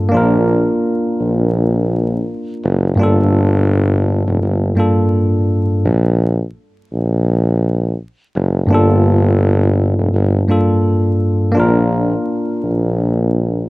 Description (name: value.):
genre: hip hop, boom-bap hip-hop.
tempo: 84 BPM.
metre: 4/4.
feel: swing 57% on 16ths.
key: Bb major.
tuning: A4 = 440 Hz.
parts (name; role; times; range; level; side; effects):
bell-like tine electric piano; accompaniment; 0.0-13.7 s; G2 to Bb4; -14 LUFS; equal; cassette tape.
clear tuba; bass; 0.1-13.7 s; F1 to Bb1; -15 LUFS; equal; none.
room: light reverb, studio ambience.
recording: dark, warm production, vinyl crackle.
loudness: -13 LUFS.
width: side -21 dB against mid.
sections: 0.0-13.7 A section.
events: break 5.9-8.7.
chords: 0.1 Bb; 3.0 Gm7; 5.9 N.C.; 8.7 Gm7; 11.6 Bb.